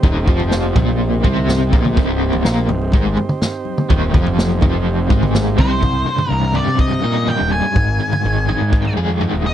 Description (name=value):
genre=psychedelic rock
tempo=124 BPM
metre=4/4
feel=straight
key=C minor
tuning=A4 = 440 Hz
part: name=overdriven combo organ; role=sustained chords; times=0.0-5.8 s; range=C4 to C5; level=-26 LUFS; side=right 6 dB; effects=none
part: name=overdriven semi-hollow guitar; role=riff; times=0.0-9.5 s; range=C2 to Ab4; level=-19 LUFS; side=left 1 dB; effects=tremolo
part: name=fuzz picked electric bass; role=bass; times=0.0-9.5 s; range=C1 to C3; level=-19 LUFS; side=equal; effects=overdrive
part: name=vintage drum kit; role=drums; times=0.0-9.3 s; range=kick drum, snare drum, toms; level=-18 LUFS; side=equal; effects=none
part: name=congas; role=percussion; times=0.6-5.8 s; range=none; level=-30 LUFS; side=left 17 dB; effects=none
part: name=octave-fuzz lead guitar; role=melody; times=5.6-9.5 s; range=C5 to Ab5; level=-21 LUFS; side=equal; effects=distortion, slapback echo
room=little or no reverb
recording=dry, close 1970s-style studio recording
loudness=-14 LUFS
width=side -11 dB against mid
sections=0.0-5.8 A section; 5.8-9.5 B section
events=drum fill 5.5-5.8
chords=0.0 Cm; 7.8 Ab5